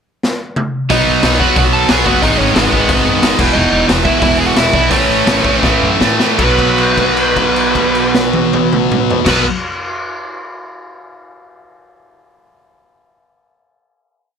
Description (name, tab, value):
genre	punk rock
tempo	154-182 BPM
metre	4/4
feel	straight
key	B mixolydian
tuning	A4 = 440 Hz
part	raw garage drum kit	drums	0.2-9.4 s	crash cymbal, hi-hat, kick drum, snare drum, toms	-17 LUFS	left 1 dB	none
part	dark smooth lead guitar	melody	0.9-9.4 s	B3 to A5	-16 LUFS	right 2 dB	overdrive
part	cranked stack guitar	riff	0.9-9.4 s	E2 to B3	-16 LUFS	right 12 dB	overdrive
part	overdriven electric guitar	riff	0.9-9.5 s	E2 to B3	-19 LUFS	equal	none
part	tight distorted guitar	riff	0.9-9.5 s	E2 to B3	-17 LUFS	left 15 dB	distortion
part	upright bass	bass	0.9-9.4 s	E1 to A2	-21 LUFS	left 1 dB	none
room	light reverb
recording	none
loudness	-10 LUFS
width	side -7 dB against mid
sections	0.0-0.9 pickup bar; 0.9-6.4 riff; 6.4-9.5 final chord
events	drum fill 0.2-0.9, 5.6-6.4; slowing down 3.6-6.4; held note 6.4-9.3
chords	0.0 N.C.; 0.9 B; 2.2 G#m; 3.4 E5; 4.9 A; 6.4 B5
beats	0.24 0.57 | 0.90 1.23 1.56 1.90 | 2.23 2.56 2.89 3.23 | 3.56 3.89 4.23 4.57 | 4.92 5.27 5.63 6.00 | 6.39 6.78 7.17 7.56 | 7.95 8.33 8.72 9.11